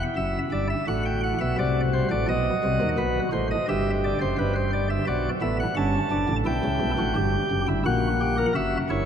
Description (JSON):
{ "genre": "classical, baroque-style 3-part fugue for pipe organ", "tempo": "86 BPM", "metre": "4/4", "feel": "straight", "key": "E minor", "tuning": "A4 = 440 Hz", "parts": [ { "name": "chamber organ, sparkling flutes", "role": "solo", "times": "0.0-9.1 s", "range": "F#1 to A5", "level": "-22 LUFS", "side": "equal", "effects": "none" } ], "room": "wet cathedral reverb, RT60 7.2 s", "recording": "none", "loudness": "-22 LUFS", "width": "side -8 dB against mid", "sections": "0.0-9.1 A section", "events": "none", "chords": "0.0 Em; 0.9 F#m7b5/A; 2.3 B7; 3.7 Em; 5.1 Bm; 6.5 C#m7b5; 7.9 F#7/A#", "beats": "0.17 0.87 1.58 | 2.28 2.98 3.68 4.38 | 5.08 5.77 6.46 7.16 | 7.86 8.55" }